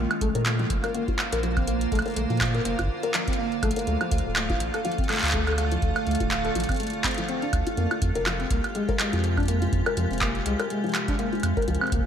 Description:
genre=IDM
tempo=123 BPM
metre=4/4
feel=swing 56% on 16ths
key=unclear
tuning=A4 = 439 Hz
part: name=icy glass pad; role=sustained chords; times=0.0-12.1 s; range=C3 to C5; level=-31 LUFS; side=right 2 dB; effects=chorus, built-in reverb, sidechain pumping
part: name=felt-muted upright piano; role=arpeggios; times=0.0-12.0 s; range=F3 to Bb4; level=-29 LUFS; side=left 4 dB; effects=wide subtle chorus, low-pass filter, ping-pong delay
part: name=warm sub bass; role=bass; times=0.0-12.0 s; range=D1 to Bb2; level=-27 LUFS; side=equal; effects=none
part: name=pulsing gated texture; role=texture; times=0.5-12.1 s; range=F5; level=-36 LUFS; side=right 3 dB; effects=chorus, built-in reverb
part: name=booming analog drum machine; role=drums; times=0.1-12.0 s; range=handclaps, hi-hat, woodblock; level=-29 LUFS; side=right 1 dB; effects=gated reverb, digital delay
part: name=electronic kick drum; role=drums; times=0.2-12.1 s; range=none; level=-29 LUFS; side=equal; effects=none
room=moderate plate reverb, RT60 2.6 s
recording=bright 1980s-style digital production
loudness=-23 LUFS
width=side -8 dB against mid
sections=0.0-12.1 A section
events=filter sweep on felt piano 0.0-12.1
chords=0.0 Bbadd9; 3.9 Dm; 7.8 Fmadd9

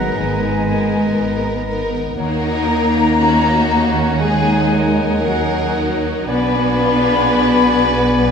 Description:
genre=cinematic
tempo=59 BPM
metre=4/4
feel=rubato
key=unclear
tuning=A4 = 441 Hz
part: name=warm symphonic violin section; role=melody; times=0.0-8.3 s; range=F#4 to B4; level=-23 LUFS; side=left 2 dB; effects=none
part: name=mellow small flute group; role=second line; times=0.0-8.3 s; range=F#5 to B5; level=-20 LUFS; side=left 4 dB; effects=none
part: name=warm clarinet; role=second line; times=0.0-8.3 s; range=B4 to D5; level=-27 LUFS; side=left 2 dB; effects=none
part: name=warm oboe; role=second line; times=0.0-8.3 s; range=F#5 to A#5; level=-28 LUFS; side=right 2 dB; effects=none
part: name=warm symphonic violin section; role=second line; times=0.0-8.3 s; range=D#4 to G#4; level=-28 LUFS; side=left 2 dB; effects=none
part: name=warm symphonic viola section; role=accompaniment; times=0.0-8.3 s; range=B3 to D#4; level=-25 LUFS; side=right 1 dB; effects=none
part: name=dark French horn section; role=sustained chords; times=0.0-8.3 s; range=F#3 to B3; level=-22 LUFS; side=left 2 dB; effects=none
part: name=concert harp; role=arpeggios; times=0.0-8.3 s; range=G#2 to A#5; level=-27 LUFS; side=left 6 dB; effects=none
part: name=rich studio cello section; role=bass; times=0.0-8.3 s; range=F#3 to B3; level=-21 LUFS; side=right 1 dB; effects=none
part: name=warm symphonic double bass section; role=bass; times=0.0-8.3 s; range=G#1 to D#2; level=-22 LUFS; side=right 4 dB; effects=none
room=wet scoring stage reverb, RT60 1.6 s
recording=nothing above 11.0 kHz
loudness=-14 LUFS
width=side -6 dB against mid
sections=0.0-8.3 A section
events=none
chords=0.0 G#madd9; 2.2 D#m7; 6.3 Bm6

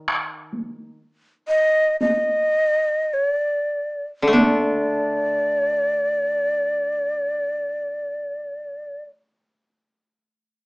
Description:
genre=japanese traditional, Japanese chamber music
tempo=48-69 BPM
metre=4/4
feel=rubato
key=unclear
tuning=A4 = 438 Hz
part: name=koto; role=accompaniment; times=0.0-9.1 s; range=D3 to D4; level=-21 LUFS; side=left 1 dB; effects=none
part: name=taiko ensemble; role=percussion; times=0.1-4.9 s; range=none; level=-22 LUFS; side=equal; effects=none
part: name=breathy shakuhachi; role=melody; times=1.5-9.0 s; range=D5 to Eb5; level=-20 LUFS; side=equal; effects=none
room=light reverb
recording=small speaker sound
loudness=-19 LUFS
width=side -30 dB against mid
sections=0.0-4.4 A section; 4.4-9.1 B section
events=slowing down 0.0-4.4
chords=none

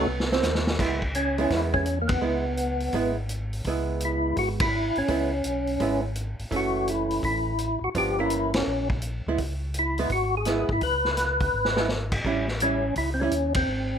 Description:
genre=soul jazz organ trio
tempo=168 BPM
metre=4/4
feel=swing 65% on 8ths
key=C# minor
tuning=A4 = 440 Hz
part: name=percussive tonewheel organ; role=melody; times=0.0-14.0 s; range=A#3 to B4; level=-26 LUFS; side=left 1 dB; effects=slow rotary speaker, chorus vibrato, plate reverb
part: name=archtop guitar, miked and amplified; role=accompaniment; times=0.0-13.3 s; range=E3 to C5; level=-29 LUFS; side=right 5 dB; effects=none
part: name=mellow tonewheel organ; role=bass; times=0.0-14.0 s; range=F#1 to G#2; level=-30 LUFS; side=equal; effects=slow rotary speaker
part: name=vintage drum kit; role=drums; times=0.2-13.6 s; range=crash cymbal, hi-hat, kick drum, ride cymbal, snare drum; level=-30 LUFS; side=equal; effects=none
room=moderate club reverb, RT60 0.7 s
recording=none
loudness=-23 LUFS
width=side -8 dB against mid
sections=0.8-14.0 A section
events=drum fill 0.1-0.8, 11.5-11.9; band accent 2.0, 4.6, 8.5, 13.5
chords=0.1 Cmmaj7; 0.8 C#m7; 6.5 F#m7; 8.0 Gdim7; 9.4 C#m7; 12.2 A7

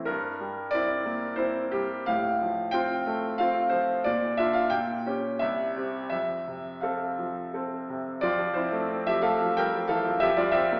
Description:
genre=classical, romantic character piece for solo piano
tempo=82-95 BPM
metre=3/4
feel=rubato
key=unclear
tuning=A4 = 441 Hz
part: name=bright concert grand piano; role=solo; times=0.0-10.8 s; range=C2 to G5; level=-28 LUFS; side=equal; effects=none
room=wet recital hall reverb, RT60 1.4 s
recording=heard from further back in the room, AM radio sound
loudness=-28 LUFS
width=mono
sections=0.0-8.3 A section; 8.3-10.8 B section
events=none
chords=0.1 C7/G; 2.1 F/A; 4.1 Bb; 4.7 Gdim/Bb; 5.4 C; 6.1 F; 8.3 C7/F

